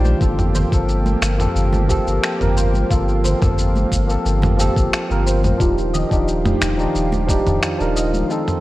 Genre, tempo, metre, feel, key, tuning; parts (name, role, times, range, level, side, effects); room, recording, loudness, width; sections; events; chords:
sunset chillout; 89 BPM; 4/4; straight; G minor; A4 = 440 Hz
barky tine electric piano; accompaniment; 0.0-8.6 s; F3 to Bb4; -22 LUFS; right 1 dB; overdrive, auto-pan, low-pass filter, ping-pong delay
lush unison pad; sustained chords; 0.0-8.6 s; Eb3 to D5; -26 LUFS; right 1 dB; chorus
warm sub bass; bass; 0.0-8.2 s; Eb1 to Bb1; -19 LUFS; equal
congas; percussion; 0.0-8.3 s; -28 LUFS; right 2 dB
dusty soul sampler-style drum kit; drums; 0.1-8.6 s; finger snaps, shaker, toms; -23 LUFS; equal
soft round pluck; arpeggios; 0.2-8.6 s; F4 to Eb5; -28 LUFS; equal; ensemble chorus, ping-pong delay
electronic kick drum; drums; 0.2-7.4 s; -20 LUFS; equal
moderate concert hall reverb, RT60 2.0 s; worn, warbling old tape, cassette tape, warbly pitch drift; -16 LUFS; side -17 dB against mid
0.0-8.6 A section
filter sweep on tine electric piano 0.0-8.6
0.2 Gm11; 5.6 Ebmaj9